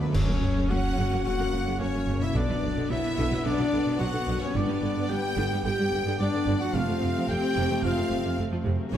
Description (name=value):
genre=cinematic, heroic adventure film score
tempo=109 BPM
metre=4/4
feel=straight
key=unclear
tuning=A4 = 441 Hz
part: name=rich symphonic violin section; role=melody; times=0.0-9.0 s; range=B4 to G5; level=-39 LUFS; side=left 2 dB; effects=none
part: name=bright symphonic violin section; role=second line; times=0.0-9.0 s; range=A4 to G5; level=-39 LUFS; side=left 2 dB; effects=none
part: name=dark clarinet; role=second line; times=0.0-9.0 s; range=C#4 to G4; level=-37 LUFS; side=left 2 dB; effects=none
part: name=warm oboe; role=second line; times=0.0-9.0 s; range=B4 to G5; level=-39 LUFS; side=right 1 dB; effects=none
part: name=dark French horn section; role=sustained chords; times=0.0-9.0 s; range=B3 to G4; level=-31 LUFS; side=left 4 dB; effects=none
part: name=concert harp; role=arpeggios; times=0.0-9.0 s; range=F2 to D6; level=-39 LUFS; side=left 8 dB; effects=none
part: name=dark trumpet section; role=stabs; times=0.0-9.0 s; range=B4 to G5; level=-36 LUFS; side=right 1 dB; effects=none
part: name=rich symphonic double bass section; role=bass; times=0.0-9.0 s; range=F1 to B1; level=-32 LUFS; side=right 2 dB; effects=none
part: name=rich symphonic viola section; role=accompaniment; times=0.1-9.0 s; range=C3 to C#4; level=-33 LUFS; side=right 2 dB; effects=none
part: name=warm trombone section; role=sustained chords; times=0.1-9.0 s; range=F#2 to B3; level=-36 LUFS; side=right 1 dB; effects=none
part: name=rich symphonic cello section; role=bass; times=0.1-9.0 s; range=F2 to B2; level=-33 LUFS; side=right 2 dB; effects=none
part: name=clash cymbals and concert bass drum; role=percussion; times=0.1-1.2 s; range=none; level=-32 LUFS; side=equal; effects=none
room=wet scoring stage reverb, RT60 1.7 s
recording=none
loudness=-24 LUFS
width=side -10 dB against mid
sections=0.1-9.0 A section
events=band accent 0.1-0.7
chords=0.1 F#; 2.4 Bm; 4.6 G; 6.7 F